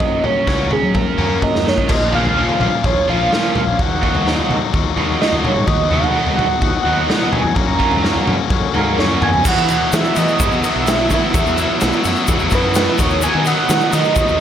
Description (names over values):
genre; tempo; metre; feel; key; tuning
indie rock; 127 BPM; 4/4; straight; unclear; A4 = 440 Hz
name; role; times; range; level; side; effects
pulse-width lead; melody; 0.0-14.4 s; G#4 to A#5; -20 LUFS; right 3 dB; chorus, slapback echo
biting overdriven guitar; riff; 0.0-14.4 s; E2 to A#4; -21 LUFS; right 7 dB; lush chorus, slapback echo
crunchy overdriven guitar; riff; 0.0-14.4 s; E#3 to F#4; -21 LUFS; left 10 dB; none
fuzz fingered electric bass; bass; 0.0-14.4 s; A#1 to F#3; -22 LUFS; equal; overdrive
raw garage drum kit; drums; 0.0-14.3 s; crash cymbal, kick drum, ride cymbal, snare drum, toms; -19 LUFS; equal; none
egg shaker; percussion; 9.4-14.3 s; none; -30 LUFS; left 10 dB; none
room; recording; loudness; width
light reverb; none; -14 LUFS; side -9 dB against mid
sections
0.0-1.9 A section; 1.9-9.5 B section; 9.5-14.4 C section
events
drum fill 1.4-1.9, 9.0-9.5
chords
0.0 F#6; 1.9 A#m; 3.8 D#m; 5.7 B/D#; 7.6 F#; 9.5 Esus2; 13.0 B/D#